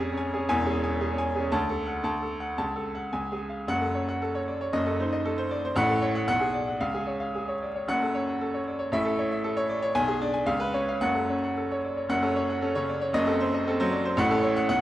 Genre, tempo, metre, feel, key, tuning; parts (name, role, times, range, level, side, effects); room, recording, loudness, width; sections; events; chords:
classical, virtuoso piano study; 107-120 BPM; 2/4; rubato; F# minor; A4 = 440 Hz
bright baby grand piano; solo; 0.0-14.8 s; E1 to A5; -25 LUFS; equal
moderate concert hall reverb, RT60 1.7 s; dark, warm production, vinyl crackle; -25 LUFS; side -14 dB against mid
0.0-3.7 A section; 3.7-12.1 B section; 12.1-14.8 C section
0.5 C#m/E; 1.5 D; 2.6 F#m/C#; 3.1 C#; 3.7 F#m; 4.7 F#dim7; 5.8 F#m/A; 6.3 G#m7b5/B; 6.8 C#; 7.9 F#m; 8.9 A; 9.9 G#dim/B; 10.5 C#7; 11.0 F#m; 13.1 F#dim7; 14.2 F#m/A